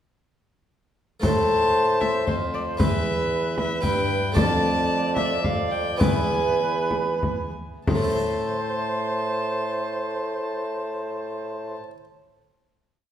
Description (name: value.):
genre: classical, renaissance-style consort dance.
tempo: 89-116 BPM.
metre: 3/4.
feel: straight.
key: A minor.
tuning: A4 = 441 Hz.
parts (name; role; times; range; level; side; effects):
warm violin; melody; 1.2-11.8 s; C5 to A5; -28 LUFS; left 2 dB; none.
mellow cor anglais; second line; 1.2-11.8 s; B4 to D5; -28 LUFS; right 2 dB; none.
harpsichord; accompaniment; 1.2-12.0 s; E2 to E5; -28 LUFS; left 1 dB; none.
warm bassoon; bass; 1.2-11.8 s; E2 to A2; -30 LUFS; right 1 dB; none.
frame drum; percussion; 1.2-8.2 s; none; -26 LUFS; left 1 dB; none.
room: wet recital hall reverb, RT60 1.3 s.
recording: heard from further back in the room.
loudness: -21 LUFS.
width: side -10 dB against mid.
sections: 1.2-7.9 A section; 7.9-11.9 final chord.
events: slowing down 3.6-7.9.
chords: 1.2 Am; 2.8 Em; 4.4 Dm/F; 6.0 E; 7.9 Am.